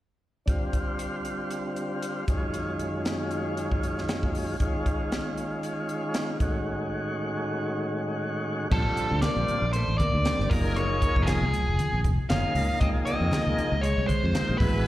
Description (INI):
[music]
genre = electric jazz fusion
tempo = 117 BPM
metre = 4/4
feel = swing 56% on 16ths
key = unclear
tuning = A4 = 440 Hz
[part]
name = tonewheel organ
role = accompaniment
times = 0.5-14.9 s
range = Gb2 to Bb4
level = -30 LUFS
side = equal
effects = slow rotary speaker, slapback echo
[part]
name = crisp fusion drum kit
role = drums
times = 0.5-14.7 s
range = crash cymbal, hi-hat, kick drum, snare drum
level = -29 LUFS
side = equal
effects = none
[part]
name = biting lead guitar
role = melody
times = 8.7-14.9 s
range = Ab4 to F5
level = -28 LUFS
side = equal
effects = overdrive, slapback echo
[part]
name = vintage hollow-body jazz guitar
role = second line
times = 8.7-14.9 s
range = F3 to Db4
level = -34 LUFS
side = right 1 dB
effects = tape echo
[part]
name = fingered electric bass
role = bass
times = 8.7-14.9 s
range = F1 to F2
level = -26 LUFS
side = equal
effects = none
[part]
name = congas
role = percussion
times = 8.7-14.7 s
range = none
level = -33 LUFS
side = equal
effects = none
[sound]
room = light reverb, small room ambience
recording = live gig heard through the venue's PA, recital hall reverb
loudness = -25 LUFS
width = side -15 dB against mid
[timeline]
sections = 0.5-8.7 A section; 8.7-14.9 B section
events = none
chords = 0.5 G7sus4/D; 2.3 Gbsus2; 4.6 Dbadd9; 6.4 Amaj7; 8.7 Bbmaj9; 10.5 Gbmaj9; 12.8 Dbmaj9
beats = | 0.48 0.99 1.51 2.02 | 2.54 3.06 3.57 4.09 | 4.60 5.12 5.63 6.14 | 6.66 7.17 7.69 8.20 | 8.71 9.23 9.74 10.25 | 10.76 11.27 11.79 12.30 | 12.81 13.32 13.83 14.35 | 14.86